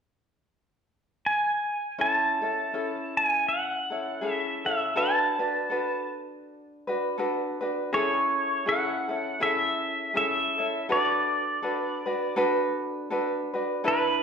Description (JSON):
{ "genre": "Hawaiian", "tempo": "81 BPM", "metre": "4/4", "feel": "swing 58% on 8ths", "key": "A major", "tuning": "A4 = 439 Hz", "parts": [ { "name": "pedal steel guitar", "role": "melody", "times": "1.3-14.2 s", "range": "B4 to A5", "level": "-26 LUFS", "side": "right 1 dB", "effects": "none" }, { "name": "ukulele", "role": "accompaniment", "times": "2.0-14.2 s", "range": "C#4 to B4", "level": "-28 LUFS", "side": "left 1 dB", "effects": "none" } ], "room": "wet large studio reverb, RT60 1.3 s", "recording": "band playing live in one room", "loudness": "-24 LUFS", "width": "side -6 dB against mid", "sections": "0.0-2.0 A section; 2.0-7.9 B section; 7.9-14.2 C section", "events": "none", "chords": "0.0 N.C.; 2.0 Amaj7; 5.0 Bm7; 7.9 Amaj7; 10.9 Bm7" }